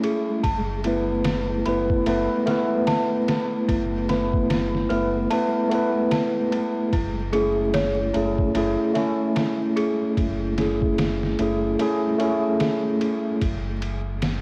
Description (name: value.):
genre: trip hop.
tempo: 74 BPM.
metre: 4/4.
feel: swing 60% on 16ths.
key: F# minor.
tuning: A4 = 445 Hz.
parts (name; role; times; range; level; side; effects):
tine electric piano; accompaniment; 0.0-13.4 s; A3 to B4; -25 LUFS; equal; harmonic tremolo, vintage 12-bit sampler grit, cassette tape, tape echo.
worn celesta; arpeggios; 0.0-10.2 s; E4 to B5; -31 LUFS; equal; vintage 12-bit sampler grit, cassette tape, analog delay.
trip hop sampler-style drum kit; drums; 0.0-14.4 s; kick drum, ride cymbal, snare drum; -32 LUFS; equal; cassette tape.
flickering grainy texture; texture; 0.2-14.4 s; G#3; -40 LUFS; equal; none.
round analog bass; bass; 0.4-14.4 s; F#1; -32 LUFS; equal; none.
room: light reverb.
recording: home recording on cassette, vinyl crackle.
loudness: -23 LUFS.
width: mono.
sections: 0.0-14.4 A section.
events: none.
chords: 0.4 Asus2/F#; 6.9 F#m9; 13.4 F#sus2.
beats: | 0.44 1.25 2.06 2.87 | 3.69 4.50 5.31 6.12 | 6.93 7.74 8.55 9.36 | 10.17 10.98 11.79 12.60 | 13.41 14.22.